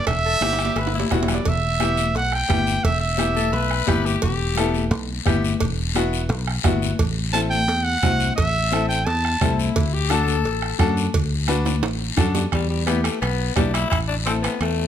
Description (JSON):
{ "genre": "latin, cumbia", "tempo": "173 BPM", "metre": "4/4", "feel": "straight", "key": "E minor", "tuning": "A4 = 440 Hz", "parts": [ { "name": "clear trumpet", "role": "melody", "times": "0.0-4.0, 7.3-9.6 s", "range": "D5 to A5", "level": "-23 LUFS", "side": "right 2 dB", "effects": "none" }, { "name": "fingered electric bass", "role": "bass", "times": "0.1-14.9 s", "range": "E1 to F#2", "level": "-24 LUFS", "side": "equal", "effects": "none" }, { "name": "bombo", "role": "percussion", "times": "0.1-14.8 s", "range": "none", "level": "-25 LUFS", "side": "right 3 dB", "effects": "none" }, { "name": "congas", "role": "percussion", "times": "0.1-14.8 s", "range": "none", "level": "-29 LUFS", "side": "left 4 dB", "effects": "none" }, { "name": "cowbell and timbales", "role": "percussion", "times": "0.1-14.8 s", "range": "none", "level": "-29 LUFS", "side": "right 4 dB", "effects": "none" }, { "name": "guiro", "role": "percussion", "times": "0.1-14.9 s", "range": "none", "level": "-31 LUFS", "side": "left 8 dB", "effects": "none" }, { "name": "growling tenor saxophone", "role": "second line", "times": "0.3-4.9, 9.4-14.9 s", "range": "G3 to B4", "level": "-26 LUFS", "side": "left 6 dB", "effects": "none" }, { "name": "bright upright piano", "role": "accompaniment", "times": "0.4-14.5 s", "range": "B3 to B4", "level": "-26 LUFS", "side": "left 4 dB", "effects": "none" } ], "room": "light reverb", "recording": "none", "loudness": "-19 LUFS", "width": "side -10 dB against mid", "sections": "0.0-1.5 A section; 1.5-12.5 B section; 12.5-14.9 C section", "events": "drum fill 0.4-1.5, 11.7-12.5; tenor saxophone solo 12.5-14.9", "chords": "0.1 Em; 7.0 Am; 9.8 D; 12.5 Em; 13.9 Am", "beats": "| 0.07 0.41 0.76 1.11 | 1.45 1.80 2.15 2.49 | 2.84 3.19 3.53 3.88 | 4.22 4.57 4.92 5.26 | 5.61 5.96 6.30 6.65 | 6.99 7.34 7.69 8.03 | 8.38 8.72 9.07 9.41 | 9.76 10.11 10.45 10.80 | 11.14 11.49 11.84 12.18 | 12.53 12.87 13.22 13.57 | 13.91 14.26 14.61" }